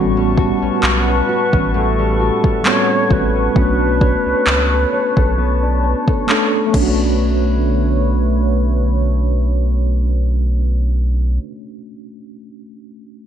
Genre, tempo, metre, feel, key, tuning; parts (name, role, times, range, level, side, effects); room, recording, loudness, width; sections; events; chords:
contemporary R&B; 66 BPM; 4/4; swing 54% on 16ths; B minor; A4 = 439 Hz
mellow tine electric piano; accompaniment; 0.0-13.3 s; G3 to A4; -21 LUFS; right 1 dB; medium stereo tremolo, low-pass filter
hollow soft pad; sustained chords; 0.0-11.4 s; D3 to C#6; -23 LUFS; right 1 dB; chorus, sidechain pumping, low-pass filter
nylon-string guitar; arpeggios; 0.0-11.6 s; A2 to C#5; -25 LUFS; left 6 dB; wide subtle chorus, low-pass filter
rubbery square bass; bass; 0.0-11.4 s; A1 to C#2; -17 LUFS; equal
smooth R&B drum kit; drums; 0.4-7.0 s; crash cymbal, handclaps, kick drum; -18 LUFS; equal; overdrive, vintage 12-bit sampler grit, gated reverb
alto flute; melody; 0.8-6.3 s; A4 to C#5; -20 LUFS; equal; low-pass filter, ping-pong delay
light reverb, digital ambience; bright 1980s-style digital production; -14 LUFS; side -9 dB against mid
0.0-7.2 A section; 7.2-10.8 B section
filter sweep 0.0-7.2
0.0 A13; 3.6 Bm9